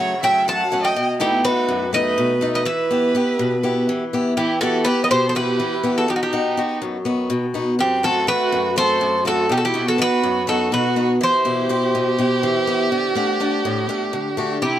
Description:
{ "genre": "greek folk, Greek bouzouki band", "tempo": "246 BPM (eighths)", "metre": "7/8", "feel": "straight", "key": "E harmonic minor", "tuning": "A4 = 438 Hz", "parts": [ { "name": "Greek bouzouki", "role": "melody", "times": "0.0-14.8 s", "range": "F#4 to A5", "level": "-20 LUFS", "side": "equal", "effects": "none" }, { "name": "rich violin", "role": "second line", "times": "0.0-14.8 s", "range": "C4 to F#5", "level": "-23 LUFS", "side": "right 4 dB", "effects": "none" }, { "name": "picked swing-style acoustic guitar", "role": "accompaniment", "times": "0.0-14.8 s", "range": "F#2 to F#5", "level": "-21 LUFS", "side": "left 2 dB", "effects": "none" } ], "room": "light reverb", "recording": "none", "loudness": "-17 LUFS", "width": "side -11 dB against mid", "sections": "0.0-4.4 A section; 4.4-14.8 B section", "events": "none", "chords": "0.0 F#m; 1.0 B7; 2.7 Em; 6.1 B; 7.8 F#dim; 9.5 B; 11.2 Em; 12.9 D", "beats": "0.23 0.47 0.72 | 0.96 1.20 1.45 1.69 1.93 2.18 2.42 | 2.66 2.91 3.15 3.40 3.64 3.88 4.13 | 4.37 4.62 4.86 5.10 5.35 5.59 5.84 | 6.08 6.33 6.57 6.81 7.06 7.30 7.55 | 7.79 8.04 8.28 8.52 8.77 9.01 9.26 | 9.50 9.74 9.99 10.23 10.48 10.72 10.97 | 11.21 11.45 11.70 11.94 12.19 12.43 12.67 | 12.92 13.16 13.40 13.65 13.89 14.14 14.38 | 14.62" }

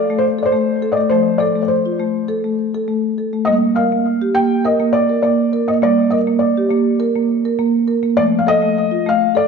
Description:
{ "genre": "world meditative, meditative tuned percussion", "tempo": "102 BPM", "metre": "4/4", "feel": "straight", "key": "G minor", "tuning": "A4 = 440 Hz", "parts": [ { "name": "felt-muted upright piano", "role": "melody", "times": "0.0-9.5 s", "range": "C5 to G5", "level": "-17 LUFS", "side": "left 2 dB", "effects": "ping-pong delay" }, { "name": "marimba with soft mallets", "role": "arpeggios", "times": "0.0-9.5 s", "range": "F3 to Bb4", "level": "-16 LUFS", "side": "right 1 dB", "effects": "none" } ], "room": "wet scoring stage reverb, RT60 1.6 s, small room ambience", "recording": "dark, warm production", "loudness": "-14 LUFS", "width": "side -5 dB against mid", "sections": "0.0-9.5 A section", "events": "none", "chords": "0.0 F; 3.5 Gm; 8.2 F", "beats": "0.53 | 1.12 1.71 2.29 2.88 | 3.47 4.06 4.65 5.24 | 5.82 6.41 7.00 7.59 | 8.18 8.77 9.36" }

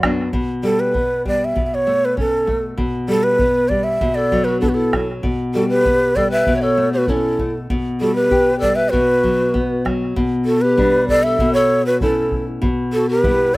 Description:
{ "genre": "andean folk, Andean ensemble", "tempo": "98 BPM", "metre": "2/4", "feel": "straight", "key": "unclear", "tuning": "A4 = 440 Hz", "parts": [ { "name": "breathy mellow shakuhachi", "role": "melody", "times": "0.0-13.6 s", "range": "F#4 to E5", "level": "-17 LUFS", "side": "right 1 dB", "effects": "slapback echo" }, { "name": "bright polished pan flute", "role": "second line", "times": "0.0, 4.2-13.6 s", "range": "D4 to C#5", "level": "-23 LUFS", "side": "left 2 dB", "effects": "none" }, { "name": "nylon-string guitar", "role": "accompaniment", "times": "0.0-13.6 s", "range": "F#2 to G4", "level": "-20 LUFS", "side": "left 1 dB", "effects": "none" }, { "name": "bombo", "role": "percussion", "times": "0.0-13.6 s", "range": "none", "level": "-24 LUFS", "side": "equal", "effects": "none" } ], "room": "light reverb", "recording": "recorded outdoors, with no room sound", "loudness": "-15 LUFS", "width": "side -20 dB against mid", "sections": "0.3-10.2 A section; 10.2-13.6 A section", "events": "none", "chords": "0.3 G/B; 1.6 A/B; 2.8 G/B; 4.0 B5; 5.2 G/B; 6.5 A/B; 7.7 Gadd9/B; 8.9 B5; 10.2 G/B; 11.4 A/B; 12.6 Em/B", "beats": "| 0.33 0.95 | 1.56 2.17 | 2.78 3.40 | 4.01 4.62 | 5.24 5.85 | 6.47 7.08 | 7.70 8.31 | 8.93 9.54 | 10.16 10.78 | 11.39 12.01 | 12.62 13.24" }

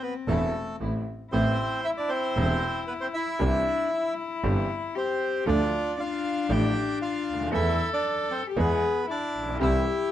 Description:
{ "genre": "tango", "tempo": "116 BPM", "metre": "4/4", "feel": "rubato", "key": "A minor", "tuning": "A4 = 441 Hz", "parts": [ { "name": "bandoneon", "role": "melody", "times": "0.0-10.1 s", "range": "A3 to G5", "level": "-28 LUFS", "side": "right 1 dB", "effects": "none" }, { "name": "warm cello", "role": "second line", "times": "0.0-10.1 s", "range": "C4 to A4", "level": "-31 LUFS", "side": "left 5 dB", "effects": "none" }, { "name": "bright baby grand piano", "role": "accompaniment", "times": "0.3-9.8 s", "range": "E1 to A4", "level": "-30 LUFS", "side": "right 1 dB", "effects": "none" }, { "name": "dark chamber string section", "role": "stabs", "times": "0.3-1.0, 9.6-9.8 s", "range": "G3 to E4", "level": "-34 LUFS", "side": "right 1 dB", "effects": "none" }, { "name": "clear double bass", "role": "bass", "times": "0.3-9.8 s", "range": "E1 to E2", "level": "-28 LUFS", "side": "right 1 dB", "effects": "none" } ], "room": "moderate studio reverb, RT60 0.8 s", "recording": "dark, warm production", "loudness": "-24 LUFS", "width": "side -11 dB against mid", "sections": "0.0-1.3 A section; 1.3-10.1 A section", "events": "none", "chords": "0.0 Amadd9; 3.4 C; 5.5 Dm; 7.5 Esus4; 8.6 E; 9.6 C", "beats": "0.28 0.80 | 1.32 1.84 2.37 2.88 | 3.40 3.92 4.43 4.95 | 5.47 5.98 6.50 7.01 | 7.53 8.04 8.56 9.08 | 9.60" }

